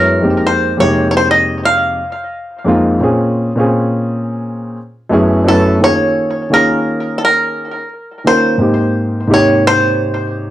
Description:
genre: hip hop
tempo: 86 BPM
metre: 4/4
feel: swing 61% on 16ths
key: unclear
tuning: A4 = 440 Hz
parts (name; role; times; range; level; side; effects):
- bluegrass banjo; melody; 0.0-10.5 s; A4 to F5; -14 LUFS; right 1 dB; analog delay
- dark baby grand piano; accompaniment; 0.0-10.5 s; F2 to Db5; -13 LUFS; equal; none
room: moderate studio reverb, RT60 0.6 s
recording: dry, gritty hardware recording, transformer saturation, cassette tape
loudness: -11 LUFS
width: side -13 dB against mid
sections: 0.0-5.8 A section; 5.8-10.5 B section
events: none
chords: 0.2 Fm11; 3.0 Bbm7; 5.1 Gbm11; 5.8 Eb7sus4; 8.6 Abmaj7

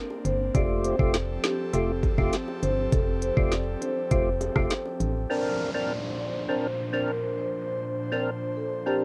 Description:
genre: dancehall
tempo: 101 BPM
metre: 4/4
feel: straight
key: unclear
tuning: A4 = 440 Hz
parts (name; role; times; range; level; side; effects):
- airy breathy pad; sustained chords; 0.0-9.0 s; Bb2 to C5; -36 LUFS; equal; chorus, sidechain pumping
- bongos; percussion; 0.1-5.1 s; none; -41 LUFS; equal; none
- marimba with soft mallets; melody; 0.2-9.0 s; G4 to D5; -34 LUFS; equal; cassette tape, tape echo
- organ-like FM bass; bass; 0.3-5.3 s; F1 to A1; -31 LUFS; equal; none
- island pop drum kit; drums; 0.3-5.1 s; hi-hat, kick drum, rim click, snare drum; -29 LUFS; equal; cassette tape
- percussive tonewheel organ; accompaniment; 0.5-9.0 s; A3 to Bb4; -30 LUFS; equal; overdrive, slow rotary speaker, sidechain pumping
- downlifter; sound effects; 5.3-9.0 s; none; -42 LUFS; equal; none
room: light reverb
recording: home recording on cassette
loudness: -27 LUFS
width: mono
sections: 0.0-5.3 A section; 5.3-9.0 B section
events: none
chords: 0.0 Bbadd9; 0.5 Fadd9; 5.3 Bbadd9

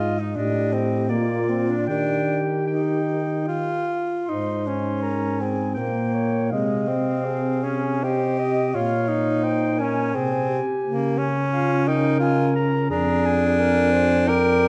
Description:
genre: classical, lyrical piece for single-reed quartet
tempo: 73-89 BPM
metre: 3/4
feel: rubato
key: Eb major, Ab major from 4.3 s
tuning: A4 = 439 Hz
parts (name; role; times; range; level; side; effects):
- clear clarinet; melody; 0.0-14.7 s; D5 to C6; -33 LUFS; equal; none
- mellow alto saxophone; second line; 0.0-14.7 s; F4 to Eb5; -30 LUFS; equal; none
- warm tenor saxophone; accompaniment; 0.0-14.7 s; Ab3 to Bb4; -26 LUFS; equal; none
- dark baritone saxophone; bass; 0.0-14.7 s; F2 to Eb3; -27 LUFS; equal; none
room: wet recital hall reverb, RT60 1.6 s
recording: dark, warm production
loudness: -22 LUFS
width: mono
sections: 0.0-4.3 A section; 4.3-14.7 B section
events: none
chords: 0.3 Am7b5; 1.1 Bb; 1.9 Eb; 4.3 Ab; 6.5 Ab/C; 8.7 Bbm7; 10.8 Bbm/Db; 12.9 Ddim/F

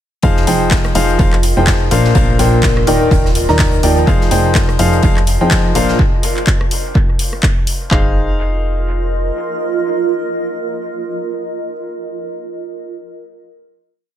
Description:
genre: piano house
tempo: 125 BPM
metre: 4/4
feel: swing 57% on 16ths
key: F dorian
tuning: A4 = 440 Hz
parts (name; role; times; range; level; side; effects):
- clear concert grand piano; riff; 0.2-11.7 s; Bb2 to Bb5; -17 LUFS; left 1 dB; sidechain pumping, dub echo
- plucky analog bass; bass; 0.2-9.3 s; Eb1 to F2; -17 LUFS; equal; sidechain pumping
- big rock drum kit; drums; 0.2-6.0 s; hi-hat, snare drum; -28 LUFS; left 3 dB; sidechain pumping on hats, high-pass filter on hats, high-pass filter on snare, high-pass filter on room
- house drum kit; drums; 0.2-8.0 s; handclaps, kick drum; -14 LUFS; equal; none
- granular cloud pad; texture; 1.0-11.9 s; F4 to Eb5; -22 LUFS; right 3 dB; built-in reverb, sidechain pumping
- house drum kit; drums; 0.5-7.8 s; handclaps, hi-hat, rim click; -22 LUFS; left 1 dB; dub echo
room: light reverb, small room ambience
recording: echo-heavy mix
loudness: -12 LUFS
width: side -11 dB against mid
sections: 0.2-7.9 drop; 7.9-11.8 final chord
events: drop 0.2-7.9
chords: 0.2 Fm7; 1.9 Bbadd9; 2.9 Ebmaj7; 4.1 Fm7; 5.8 Bbadd9; 6.7 N.C.; 7.9 Fm7

